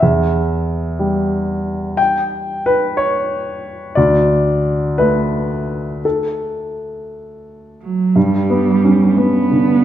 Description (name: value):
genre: neoclassical piano and strings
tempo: 56-62 BPM (dotted quarters)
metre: 6/8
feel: rubato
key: unclear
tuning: A4 = 440 Hz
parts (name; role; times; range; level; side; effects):
- warm baby grand piano; accompaniment; 0.0-9.8 s; D2 to G5; -15 LUFS; left 1 dB; none
- muted cello; second line; 7.8-9.8 s; F#3 to B3; -14 LUFS; right 4 dB; none
room: wet recital hall reverb, RT60 1.7 s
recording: none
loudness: -14 LUFS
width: side -11 dB against mid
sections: 0.0-8.2 A section; 8.2-9.8 B section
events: none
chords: 0.0 Em; 4.0 D5; 8.2 G